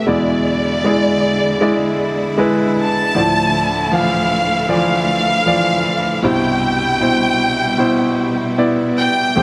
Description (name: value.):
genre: pop ballad.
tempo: 78 BPM.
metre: 4/4.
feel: straight.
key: unclear.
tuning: A4 = 440 Hz.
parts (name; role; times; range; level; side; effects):
warm studio violin section; melody; 0.0-9.4 s; D5 to A5; -20 LUFS; equal; none.
clear concert grand piano; accompaniment; 0.0-9.4 s; A1 to F5; -19 LUFS; equal; none.
bright studio string section; sustained chords; 0.0-9.4 s; B2 to G4; -26 LUFS; equal; none.
room: moderate scoring stage reverb, RT60 1.9 s, small room ambience.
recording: none.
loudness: -16 LUFS.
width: mono.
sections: 0.0-9.4 A section.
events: none.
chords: 0.1 E7; 3.2 Dmadd9; 6.2 Cmaj7.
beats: | 0.07 0.84 1.62 2.39 | 3.16 3.93 4.70 5.47 | 6.24 7.01 7.79 8.57 | 9.36.